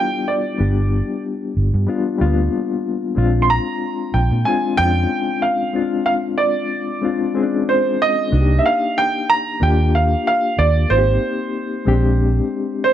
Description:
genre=lush 1970s-style soul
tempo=93 BPM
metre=4/4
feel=swing 54% on 16ths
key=unclear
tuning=A4 = 440 Hz
part: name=warm baby grand piano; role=melody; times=0.0-12.9 s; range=C5 to C6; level=-19 LUFS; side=right 3 dB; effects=none
part: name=mellow reed electric piano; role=accompaniment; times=0.0-12.9 s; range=G3 to Ab4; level=-21 LUFS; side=left 5 dB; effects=fast tremolo
part: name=vintage muted fingered electric bass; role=bass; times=0.6-12.4 s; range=G1 to Bb2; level=-16 LUFS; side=right 1 dB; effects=none
room=light reverb, studio reverb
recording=none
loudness=-16 LUFS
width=side -10 dB against mid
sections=0.0-8.3 A section; 8.3-12.9 B section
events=none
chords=0.0 G7; 3.2 Bb7; 8.3 Cm9; 9.6 Ebmaj9; 10.9 Abmaj9; 11.9 Bb13

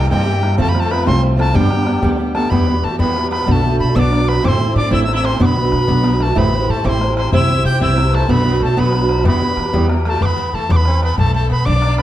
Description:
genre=celtic folk, Celtic jig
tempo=125 BPM (dotted quarters)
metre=6/8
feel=straight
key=E minor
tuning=A4 = 440 Hz
part: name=bright reedy tin whistle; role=melody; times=0.0-12.0 s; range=G5 to G6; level=-21 LUFS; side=left 1 dB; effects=tape echo
part: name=dark fiddle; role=second line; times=0.0-12.0 s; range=G4 to G5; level=-27 LUFS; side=left 7 dB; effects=none
part: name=sitar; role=second line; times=0.0-12.0 s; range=G3 to G4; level=-26 LUFS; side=right 4 dB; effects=none
part: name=fingerpicked swing-style acoustic guitar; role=accompaniment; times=0.0-10.2 s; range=A2 to C5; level=-18 LUFS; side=right 2 dB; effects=none
part: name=upright bass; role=bass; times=0.0-12.0 s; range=A1 to E3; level=-17 LUFS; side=equal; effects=none
part: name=bodhran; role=percussion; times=0.0-12.0 s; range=none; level=-21 LUFS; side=left 1 dB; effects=none
room=moderate recital hall reverb, RT60 1.5 s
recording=dark, warm production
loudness=-13 LUFS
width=side -13 dB against mid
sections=0.0-2.5 A section; 2.5-10.2 B section; 10.2-12.0 B section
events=none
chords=0.0 C7; 0.6 F; 1.6 G; 2.5 Em; 3.5 Bm; 4.4 Am; 5.4 Bm; 6.4 Am7; 7.3 C; 8.3 Bm; 9.3 Em; 10.2 E5; 11.2 Bm

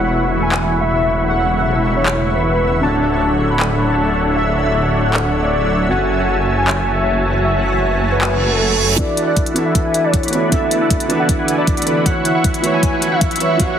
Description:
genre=future bass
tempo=156 BPM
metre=4/4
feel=half-time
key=A major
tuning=A4 = 440 Hz
part: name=warm velvety synth lead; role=melody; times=0.0-13.8 s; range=A4 to B5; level=-21 LUFS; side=equal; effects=chorus, sidechain pumping, dub echo
part: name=dark baby grand piano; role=accompaniment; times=0.0-13.8 s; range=D3 to E5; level=-22 LUFS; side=right 1 dB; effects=sidechain pumping
part: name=shimmering ambient pad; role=sustained chords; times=0.0-13.8 s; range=C#3 to E5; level=-26 LUFS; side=equal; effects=chorus, built-in reverb, sidechain pumping
part: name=dense compressed supersaw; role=riff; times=0.0-13.8 s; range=D4 to C#6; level=-20 LUFS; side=equal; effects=cassette tape, sidechain pumping, low-pass filter
part: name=wide detuned saw bass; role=bass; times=0.0-9.0 s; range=D1 to F#1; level=-19 LUFS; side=equal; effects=chorus, sidechain pumping
part: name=trap drum kit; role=drums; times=0.5-13.7 s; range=handclaps, hi-hat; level=-21 LUFS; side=left 1 dB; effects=high-pass filter on snare, high-pass filter on hats
part: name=reverse cymbal and riser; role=sound effects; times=8.3-13.8 s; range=none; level=-24 LUFS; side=right 4 dB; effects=none
part: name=electronic kick drum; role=drums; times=9.0-13.7 s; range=none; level=-18 LUFS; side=equal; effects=overdrive
room=light reverb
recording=heavily compressed radio sound, multiband compression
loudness=-14 LUFS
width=side -8 dB against mid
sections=0.0-9.0 A section; 9.0-13.8 B section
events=filter sweep on ambient pad 0.0-9.0, 9.0-13.8; reverse cymbal 8.3-9.0; build-up 9.0-13.8; filter sweep on supersaw synth 9.0-13.8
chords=0.0 A6/E; 2.8 Dmaj9; 5.9 F#m9; 9.0 E7sus4; 12.1 A6/E

